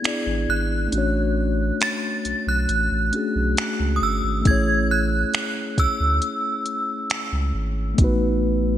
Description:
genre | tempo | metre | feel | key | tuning
contemporary R&B | 68 BPM | 4/4 | straight | A major | A4 = 440 Hz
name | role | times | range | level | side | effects
synth chime | melody | 0.0-7.5 s | D#6 to A6 | -25 LUFS | right 2 dB | ensemble chorus, tremolo, digital delay
mellow tine electric piano | accompaniment | 0.0-8.8 s | A3 to D5 | -25 LUFS | left 2 dB | medium stereo tremolo
smooth R&B drum kit | drums | 0.0-8.2 s | finger snaps, hi-hat, kick drum | -23 LUFS | right 1 dB | vintage 12-bit sampler grit, gated reverb
saturated sub bass | bass | 0.3-8.8 s | G1 to D2 | -23 LUFS | equal | none
room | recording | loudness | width
moderate lush hall reverb, RT60 2.8 s | bright 1980s-style digital production | -20 LUFS | side -11 dB against mid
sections
0.0-8.8 A section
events
break 0.0-4.5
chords
0.0 E7; 0.9 Dmaj7/A; 4.5 Amaj7; 8.0 B7/A

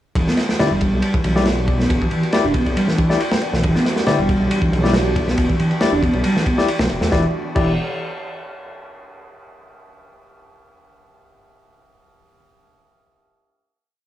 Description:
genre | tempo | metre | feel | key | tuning
breakbeat, breaks | 138 BPM | 4/4 | straight | unclear | A4 = 438 Hz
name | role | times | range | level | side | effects
phased analog pad | sustained chords | 0.2-7.3 s | E3 to G4 | -27 LUFS | right 1 dB | phaser, chorus, sidechain pumping
picked electric bass | riff | 0.2-7.8 s | D3 to D4 | -20 LUFS | right 1 dB | tape echo
detuned saw bass | bass | 0.2-7.8 s | E1 to E2 | -23 LUFS | equal | tube saturation
crunchy breakbeat drum kit | drums | 0.2-7.6 s | crash cymbal, kick drum, ride cymbal, snare drum | -21 LUFS | equal | none
bright tine electric piano | stabs | 0.6-7.7 s | E4 to D5 | -23 LUFS | left 4 dB | tape echo
room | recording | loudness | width
light reverb | dry, gritty hardware recording, small room ambience | -16 LUFS | side -13 dB against mid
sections
0.2-7.1 drop; 7.1-8.9 final chord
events
drop 0.2-7.1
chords
0.2 Em7

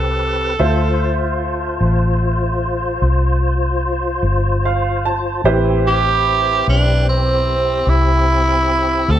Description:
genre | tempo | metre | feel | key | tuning
blues | 49 BPM (dotted quarters) | 12/8 | straight | A minor | A4 = 441 Hz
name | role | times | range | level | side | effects
growling tenor saxophone | second line | 0.0-9.2 s | C4 to A4 | -17 LUFS | right 2 dB | none
bright upright piano | accompaniment | 0.0-9.2 s | C4 to A5 | -22 LUFS | right 2 dB | none
tonewheel organ | sustained chords | 0.0-9.2 s | C4 to C5 | -22 LUFS | left 2 dB | slow rotary speaker, chorus vibrato
vintage muted fingered electric bass | bass | 0.0-9.2 s | G1 to D2 | -17 LUFS | equal | none
room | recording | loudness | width
light reverb | none | -14 LUFS | side -11 dB against mid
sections
0.0-9.2 A section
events
tenor saxophone solo 0.0-9.2; upright piano fill 4.2-5.4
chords
0.0 Am7; 0.6 Dm7; 5.4 Am7

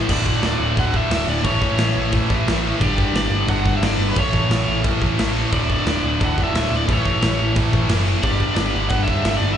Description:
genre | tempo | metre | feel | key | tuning
punk rock | 177 BPM | 4/4 | straight | D major | A4 = 444 Hz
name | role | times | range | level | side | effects
distorted electric guitar | riff | 0.0-9.6 s | D2 to A3 | -26 LUFS | right 12 dB | overdrive, slapback echo
high-gain distorted guitar | riff | 0.0-9.6 s | D2 to A4 | -25 LUFS | left 1 dB | distortion
tight distorted guitar | riff | 0.0-9.6 s | D2 to A3 | -28 LUFS | left 14 dB | distortion, slapback echo
crunchy overdriven guitar | melody | 0.1-9.6 s | B4 to F#5 | -25 LUFS | equal | slapback echo
overdriven picked electric bass | bass | 0.1-9.5 s | D1 to A1 | -22 LUFS | equal | none
big rock drum kit | drums | 0.1-9.3 s | crash cymbal, kick drum, snare drum | -23 LUFS | equal | none
room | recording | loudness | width
little or no reverb | live gig heard through the venue's PA, club reverb, nothing above 10.3 kHz | -17 LUFS | side -9 dB against mid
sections
0.1-9.6 A section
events
none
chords
0.1 D; 1.4 A; 2.8 G; 4.2 A; 5.5 D; 6.9 A; 8.2 G

